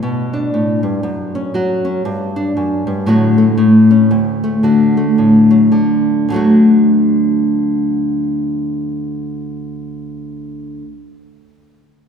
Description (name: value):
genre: folk, solo fingerstyle acoustic guitar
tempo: 104-119 BPM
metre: 4/4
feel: swing 60% on 8ths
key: D major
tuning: A4 = 440 Hz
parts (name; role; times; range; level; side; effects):
- nylon-string guitar; solo; 0.0-10.9 s; D2 to F#4; -12 LUFS; left 1 dB; none
room: wet church reverb, RT60 2.9 s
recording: recorded in a church or concert hall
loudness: -11 LUFS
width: side -7 dB against mid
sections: 0.0-6.3 A section; 6.3-10.9 B section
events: slowing down 2.0-6.3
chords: 0.0 Bm; 1.0 F#5; 2.0 Dadd11; 3.1 D/A; 3.6 A; 4.1 D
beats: | 0.01 0.51 1.02 1.53 | 2.03 2.54 3.05 3.57 | 4.09 4.62 5.17 5.72 | 6.29 6.86 7.44 8.01 | 8.59 9.16 9.74 10.31